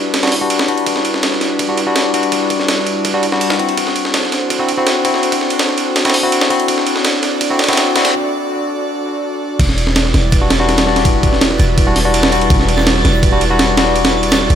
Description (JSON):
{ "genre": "drum and bass, jungle", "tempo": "165 BPM", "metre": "4/4", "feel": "straight", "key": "E minor", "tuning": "A4 = 436 Hz", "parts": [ { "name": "airy breathy pad", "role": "sustained chords", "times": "0.0-14.6 s", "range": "G3 to D5", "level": "-19 LUFS", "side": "equal", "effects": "chorus" }, { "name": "barky tine electric piano", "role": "stabs", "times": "0.0-8.1, 10.4-14.6 s", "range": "G3 to F#4", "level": "-17 LUFS", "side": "moving between left 6 dB and equal", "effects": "auto-pan, low-pass filter, dub echo" }, { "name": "breakbeat sampler-style drum kit", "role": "drums", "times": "0.1-14.6 s", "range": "crash cymbal, hi-hat, kick drum, ride cymbal, snare drum", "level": "-15 LUFS", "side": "right 1 dB", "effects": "high-pass filter on kick, high-pass filter on cymbals, high-pass filter on snare, high-pass filter on hats" }, { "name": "warm 808-style bass", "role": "bass", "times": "9.6-14.6 s", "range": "E1", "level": "-16 LUFS", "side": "equal", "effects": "none" }, { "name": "twinkling granular texture", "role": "texture", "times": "9.9-14.6 s", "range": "A6", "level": "-24 LUFS", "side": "right 3 dB", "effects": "built-in reverb" } ], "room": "light reverb, digital ambience", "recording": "none", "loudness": "-12 LUFS", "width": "side -9 dB against mid", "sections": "0.0-9.6 A section; 9.6-14.6 B section", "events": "build-up 0.0-9.6; break 8.1-9.6; drop 9.6-14.6", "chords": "0.0 Em7; 3.8 D7; 9.6 Em7" }